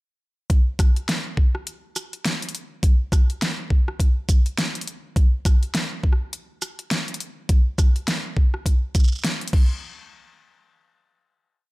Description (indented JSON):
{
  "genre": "glitch hop",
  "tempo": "103 BPM",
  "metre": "4/4",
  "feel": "swing 58% on 16ths",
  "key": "none",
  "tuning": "none",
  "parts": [
    { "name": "dubstep drum kit", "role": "drums", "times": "0.5-9.7 s", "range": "crash cymbal, hi-hat, rim click, shaker, snare drum", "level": "-26 LUFS", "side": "equal", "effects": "overdrive, studio reverb" },
    { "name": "electronic kick drum", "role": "drums", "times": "0.5-9.7 s", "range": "none", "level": "-17 LUFS", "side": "equal", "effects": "overdrive, studio reverb" }
  ],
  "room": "digital ambience",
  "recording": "none",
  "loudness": "-19 LUFS",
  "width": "side -22 dB against mid",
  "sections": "0.5-9.8 drop; 9.8-11.7 final hit",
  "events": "drop 0.5-9.8",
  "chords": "none",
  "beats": "| 0.50 1.08 1.67 2.25 | 2.83 3.42 4.00 4.58 | 5.16 5.75 6.33 6.91 | 7.49 8.08 8.66 9.24"
}